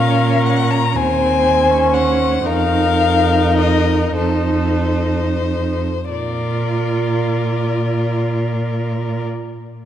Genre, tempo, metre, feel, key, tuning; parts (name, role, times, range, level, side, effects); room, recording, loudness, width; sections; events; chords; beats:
classical, slow romantic movement for string quartet; 29-42 BPM (dotted quarters); 6/8; rubato; A4 = 439 Hz
rich violin; melody; 0.0-9.2 s; C5 to Bb5; -21 LUFS; left 7 dB
rich violin; second line; 0.0-9.3 s; A4 to C5; -22 LUFS; left 1 dB
rich viola; accompaniment; 0.0-9.2 s; C4 to F4; -21 LUFS; right 2 dB
rich cello; bass; 0.0-9.2 s; Eb2 to Bb2; -19 LUFS; right 2 dB
moderate concert hall reverb, RT60 2.4 s; dark, warm production; -15 LUFS; side -10 dB against mid
0.0-6.1 A section; 6.1-9.9 B section
slowing down 0.0-6.1
0.0 Bbm; 0.9 Abadd11/Eb; 2.5 F7sus4; 6.1 Bb
0.95 | 2.46 4.17 | 6.11 7.99